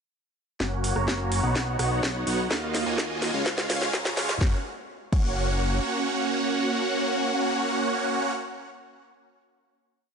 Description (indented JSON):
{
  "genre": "EDM, festival progressive house",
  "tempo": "126 BPM",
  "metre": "4/4",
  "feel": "straight",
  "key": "F# major",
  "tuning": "A4 = 440 Hz",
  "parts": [
    { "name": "supersaw chords", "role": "riff", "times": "0.6-8.3 s", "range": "G#3 to A#5", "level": "-26 LUFS", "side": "right 1 dB", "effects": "phaser, sidechain pumping, low-pass filter, digital delay" },
    { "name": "fat analog bass", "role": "bass", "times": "0.6-5.8 s", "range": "F#1 to D#2", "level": "-30 LUFS", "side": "equal", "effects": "sidechain pumping" },
    { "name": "electronic kick drum", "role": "drums", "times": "0.6-5.3 s", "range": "none", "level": "-26 LUFS", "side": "equal", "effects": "high-pass filter on kick" },
    { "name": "house drum kit", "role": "drums", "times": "0.6-5.3 s", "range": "crash cymbal, hi-hat, rim click, snare drum", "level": "-30 LUFS", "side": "equal", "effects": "none" }
  ],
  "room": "light reverb",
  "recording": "high-pass filter, nothing above 10.8 kHz",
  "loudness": "-24 LUFS",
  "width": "side -6 dB against mid",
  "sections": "0.6-4.4 build; 4.4-8.2 final chord",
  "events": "build-up 0.6-4.4; drum fill 0.6-4.4; filter sweep on supersaw synth 0.6-4.4; filter sweep 0.6-4.4",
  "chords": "0.6 F#; 1.6 Badd9; 2.5 D#madd9; 3.5 C#; 4.4 F#"
}